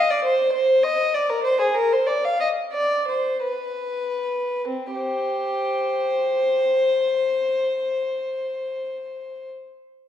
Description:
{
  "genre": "classical, baroque-style suite movement for unaccompanied violin",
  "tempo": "46-70 BPM (dotted quarters)",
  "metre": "6/8",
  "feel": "rubato",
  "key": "C minor",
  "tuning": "A4 = 440 Hz",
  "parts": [
    { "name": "warm violin", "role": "solo", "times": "0.0-9.5 s", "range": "C4 to F5", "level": "-20 LUFS", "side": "left 1 dB", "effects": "none" }
  ],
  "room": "wet recital hall reverb, RT60 1.4 s",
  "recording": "heard from further back in the room",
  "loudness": "-20 LUFS",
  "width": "side -10 dB against mid",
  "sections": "0.0-4.7 A section; 4.7-9.8 B section",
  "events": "slowing down 0.0-4.7",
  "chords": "none",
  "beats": "| 0.54 1.43 | 2.39 3.45 | 4.69 5.95 | 7.23 8.48"
}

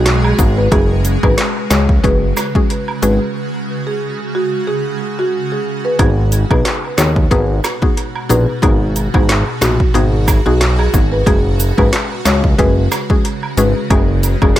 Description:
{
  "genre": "dancehall",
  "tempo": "91 BPM",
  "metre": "4/4",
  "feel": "swing 56% on 16ths",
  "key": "unclear",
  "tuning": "A4 = 439 Hz",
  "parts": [
    { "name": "mallet-like synth pluck", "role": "accompaniment", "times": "0.0-14.6 s", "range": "G#3 to G#4", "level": "-20 LUFS", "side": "left 4 dB", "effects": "chorus" },
    { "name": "granular cloud pad", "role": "sustained chords", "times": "0.0-14.6 s", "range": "B2 to A#4", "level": "-24 LUFS", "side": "equal", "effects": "built-in reverb, sidechain pumping" },
    { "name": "fat analog bass", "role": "bass", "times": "0.0-14.6 s", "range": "F#1 to D#2", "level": "-15 LUFS", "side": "equal", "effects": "none" },
    { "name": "deep house drum kit", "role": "drums", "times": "0.1-14.6 s", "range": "handclaps, hi-hat, kick drum, snare drum", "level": "-15 LUFS", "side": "equal", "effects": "none" },
    { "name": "marimba with medium mallets", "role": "melody", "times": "0.2-14.6 s", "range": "F#4 to C#5", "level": "-20 LUFS", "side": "right 2 dB", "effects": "tape echo" },
    { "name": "woodblock and cabasa", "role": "percussion", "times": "0.2-14.6 s", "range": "none", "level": "-26 LUFS", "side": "right 6 dB", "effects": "tape echo" }
  ],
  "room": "digital ambience",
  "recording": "echo-heavy mix",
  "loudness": "-12 LUFS",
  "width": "side -13 dB against mid",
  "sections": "0.0-14.6 A section",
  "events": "break 3.4-6.0",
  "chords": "0.0 G#m7; 0.7 F#sus2; 6.0 G#m7; 11.3 F#sus2",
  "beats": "0.06 | 0.72 1.38 2.04 2.70 | 3.35 4.01 4.67 5.33 | 5.99 6.65 7.31 7.97 | 8.63 9.29 9.95 10.61 | 11.27 11.93 12.59 13.25 | 13.90 14.56"
}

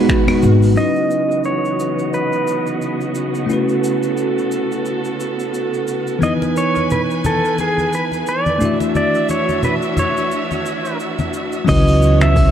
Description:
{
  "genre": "sunset chillout",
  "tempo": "88 BPM",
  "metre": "4/4",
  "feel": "swing 57% on 16ths",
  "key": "C# minor",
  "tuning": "A4 = 440 Hz",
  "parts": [
    { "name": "pedal steel guitar", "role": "melody", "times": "0.0-12.5 s", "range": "G#4 to E5", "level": "-20 LUFS", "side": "right 1 dB", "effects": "vintage 12-bit sampler grit, tape echo" },
    { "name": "bell-like tine electric piano", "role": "accompaniment", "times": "0.0-12.5 s", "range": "E3 to E5", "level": "-19 LUFS", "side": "moving between left 4 dB and right 5 dB", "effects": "auto-pan, vintage 12-bit sampler grit, tape echo" },
    { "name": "bright studio string section", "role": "sustained chords", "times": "0.0-12.5 s", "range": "B2 to G#5", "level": "-23 LUFS", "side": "right 1 dB", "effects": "low-pass filter" },
    { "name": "electronic kick drum", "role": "drums", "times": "0.1-0.2, 11.7-12.5 s", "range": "none", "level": "-17 LUFS", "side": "equal", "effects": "none" },
    { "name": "soft brush drum kit", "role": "drums", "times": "0.1-12.5 s", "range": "cabasa, claves, finger snaps, hi-hat", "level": "-29 LUFS", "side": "equal", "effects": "none" },
    { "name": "congas", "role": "percussion", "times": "0.3-0.4, 6.2-12.5 s", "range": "none", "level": "-24 LUFS", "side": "left 2 dB", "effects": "none" },
    { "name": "upright bass", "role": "bass", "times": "0.4-0.7, 11.7-12.5 s", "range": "G#1 to C#2", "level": "-13 LUFS", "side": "equal", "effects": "none" }
  ],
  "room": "moderate plate reverb, RT60 2.4 s",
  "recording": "dark, warm production",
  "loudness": "-15 LUFS",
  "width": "side -9 dB against mid",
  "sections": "0.8-11.7 A section",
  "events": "band accent 0.1-0.4; filter sweep on string section 0.8-11.7",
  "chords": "0.0 G#m7; 0.8 C#m11; 3.5 A69; 6.2 Emaj7; 8.6 Dmaj9; 11.7 C#m11",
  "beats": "0.09 | 0.77 1.45 2.13 2.81 | 3.50 4.18 4.86 5.54 | 6.22 6.91 7.59 8.27 | 8.95 9.63 10.31 11.00 | 11.68 12.36"
}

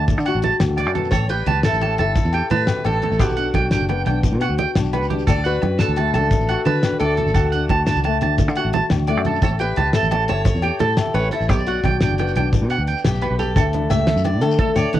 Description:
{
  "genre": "highlife guitar band",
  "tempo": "116 BPM (dotted quarters)",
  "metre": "12/8",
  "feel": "straight",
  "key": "D major",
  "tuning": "A4 = 441 Hz",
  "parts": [
    { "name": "flamenco guitar", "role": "accompaniment", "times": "0.0-15.0 s", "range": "F#2 to G4", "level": "-26 LUFS", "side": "left 7 dB", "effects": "cassette tape" },
    { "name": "electric guitar at the edge of break-up", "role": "arpeggios", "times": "0.0-15.0 s", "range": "G4 to A5", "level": "-24 LUFS", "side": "right 7 dB", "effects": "tremolo, cassette tape, analog delay" },
    { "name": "fingered electric bass", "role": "bass", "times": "0.0-15.0 s", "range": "F#1 to D3", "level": "-22 LUFS", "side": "equal", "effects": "transformer saturation" },
    { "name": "damped 70s drum kit", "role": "drums", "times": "0.1-15.0 s", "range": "hi-hat, kick drum, snare drum", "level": "-22 LUFS", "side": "equal", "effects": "none" },
    { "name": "congas", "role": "percussion", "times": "0.1-15.0 s", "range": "none", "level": "-27 LUFS", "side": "right 6 dB", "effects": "none" },
    { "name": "shekere", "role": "percussion", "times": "0.1-14.8 s", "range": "none", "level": "-26 LUFS", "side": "left 3 dB", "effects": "none" },
    { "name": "agogo bells", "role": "percussion", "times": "0.3-14.9 s", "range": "none", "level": "-32 LUFS", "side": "left 10 dB", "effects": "none" },
    { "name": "picked swing-style acoustic guitar", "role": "melody", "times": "1.1-15.0 s", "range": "F#4 to E5", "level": "-24 LUFS", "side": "left 1 dB", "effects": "cassette tape" }
  ],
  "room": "moderate studio reverb, RT60 0.6 s",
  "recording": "home recording on cassette",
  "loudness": "-16 LUFS",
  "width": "side -12 dB against mid",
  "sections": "0.0-13.6 A section; 13.6-15.0 B section",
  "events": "drum fill 12.9-13.6",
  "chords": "0.0 D; 1.1 A7; 3.2 Gmaj7; 5.3 D; 9.4 A7; 11.5 Gmaj7; 13.6 D",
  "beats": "0.09 0.61 | 1.13 1.65 2.17 2.68 | 3.20 3.72 4.24 4.76 | 5.28 5.79 6.31 6.83 | 7.35 7.87 8.39 8.90 | 9.42 9.94 10.46 10.97 | 11.49 12.01 12.53 13.04 | 13.56 14.08 14.59"
}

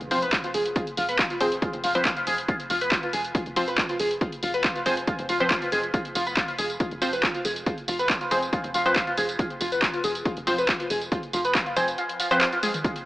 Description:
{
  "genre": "driving peak-time techno",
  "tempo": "139 BPM",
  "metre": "4/4",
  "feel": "straight",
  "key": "unclear",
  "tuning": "A4 = 441 Hz",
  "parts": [
    { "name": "tight sequencer bass", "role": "bass", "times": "0.0-11.9 s", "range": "F1", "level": "-38 LUFS", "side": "equal", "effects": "sidechain pumping" },
    { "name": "techno drum kit", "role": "drums", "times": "0.0-13.0 s", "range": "handclaps, hi-hat, tambourine, toms", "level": "-27 LUFS", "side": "equal", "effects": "overdrive, small room ambience, sidechain pumping on hats, sidechain pumping on cymbals, sidechain pumping on perc, sidechain pumping on toms" },
    { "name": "impact", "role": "sound effects", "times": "0.1-0.8 s", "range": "none", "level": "barely audible", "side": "none", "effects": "none" },
    { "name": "overdriven synth lead", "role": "riff", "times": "0.1-12.9 s", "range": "F4 to B4", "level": "-26 LUFS", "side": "equal", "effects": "phaser, tube saturation, lush chorus, vintage 12-bit sampler grit, sidechain pumping, dub echo" },
    { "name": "filtered dub chord stab", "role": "stabs", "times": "0.1-12.4 s", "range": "F3 to C5", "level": "-28 LUFS", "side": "equal", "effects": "chorus, sidechain pumping, tape echo" },
    { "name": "electronic kick drum", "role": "drums", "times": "0.3-12.9 s", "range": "none", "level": "-28 LUFS", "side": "equal", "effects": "overdrive, small room ambience" }
  ],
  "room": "moderate lush hall reverb, RT60 2.1 s",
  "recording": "AM radio sound",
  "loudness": "-22 LUFS",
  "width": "side -17 dB against mid",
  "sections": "0.0-13.1 A section",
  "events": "impact 0.0-0.8; drum fill 12.6",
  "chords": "0.0 F5",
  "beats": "0.33 | 0.76 1.19 1.62 2.05 | 2.48 2.92 3.35 3.78 | 4.21 4.64 5.07 5.51 | 5.94 6.37 6.80 7.23 | 7.66 8.10 8.53 8.96 | 9.39 9.82 10.25 10.69 | 11.12 11.55 11.98 12.41 | 12.84"
}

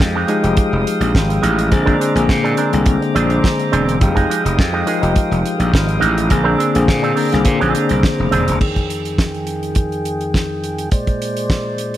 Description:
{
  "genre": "disco",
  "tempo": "104 BPM",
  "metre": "4/4",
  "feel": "straight",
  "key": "F dorian",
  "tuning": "A4 = 440 Hz",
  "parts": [
    { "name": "electric guitar with an envelope filter", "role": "accompaniment", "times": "0.0-8.5 s", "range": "Ab3 to Bb4", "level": "-21 LUFS", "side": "right 6 dB", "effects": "spring reverb" },
    { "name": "tine electric piano", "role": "accompaniment", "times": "0.0-8.6 s", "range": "D3 to Bb4", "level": "-20 LUFS", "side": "left 4 dB", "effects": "fast stereo tremolo" },
    { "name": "tonewheel organ", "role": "sustained chords", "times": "0.0-12.0 s", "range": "F2 to Eb6", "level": "-22 LUFS", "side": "equal", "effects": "slow rotary speaker, low-pass filter" },
    { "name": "gritty slap bass", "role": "bass", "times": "0.0-8.6 s", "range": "Eb1 to Bb2", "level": "-18 LUFS", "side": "equal", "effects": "overdrive" },
    { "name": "damped 70s drum kit", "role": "drums", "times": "0.0-12.0 s", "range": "crash cymbal, hi-hat, kick drum, snare drum", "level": "-18 LUFS", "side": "equal", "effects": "none" }
  ],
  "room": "light reverb, small room ambience",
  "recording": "none",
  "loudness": "-14 LUFS",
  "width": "side -13 dB against mid",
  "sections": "0.0-8.6 A section; 8.6-12.0 B section",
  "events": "none",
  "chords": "0.0 Fm9; 1.7 Bb9; 4.0 Fm9; 6.3 Bb9; 8.6 Fm9; 10.9 Bb9",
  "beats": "0.00 0.58 1.15 | 1.72 2.30 2.87 3.44 | 4.02 4.59 5.17 5.74 | 6.31 6.89 7.46 8.04 | 8.62 9.19 9.77 10.35 | 10.92 11.50"
}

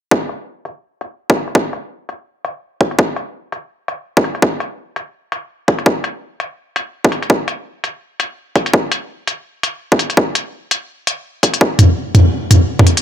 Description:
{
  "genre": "drum and bass",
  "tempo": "167 BPM",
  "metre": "4/4",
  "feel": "swing 59% on 16ths, half-time",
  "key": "none",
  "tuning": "none",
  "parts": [
    { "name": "electronic kick drum", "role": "drums", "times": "0.1-12.9 s", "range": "none", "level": "-14 LUFS", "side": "equal", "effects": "high-pass filter on kick, high-pass filter on room" },
    { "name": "organic electronic drum kit", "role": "drums", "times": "0.3-13.0 s", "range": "hi-hat, toms", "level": "-14 LUFS", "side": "equal", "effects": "low-pass filter on hats, low-pass filter on toms, low-pass filter on room" }
  ],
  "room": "little or no reverb",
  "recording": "none",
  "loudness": "-14 LUFS",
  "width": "side -10 dB against mid",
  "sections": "0.1-13.0 A section",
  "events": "filter sweep on drum 0.1-13.0",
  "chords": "none",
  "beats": "| 0.11 0.47 0.83 1.19 | 1.55 1.91 2.27 2.63 | 2.99 3.35 3.71 4.07 | 4.42 4.78 5.14 5.50 | 5.86 6.22 6.58 6.94 | 7.30 7.66 8.02 8.38 | 8.74 9.10 9.45 9.81 | 10.17 10.53 10.89 11.25 | 11.61 11.97 12.33 12.69"
}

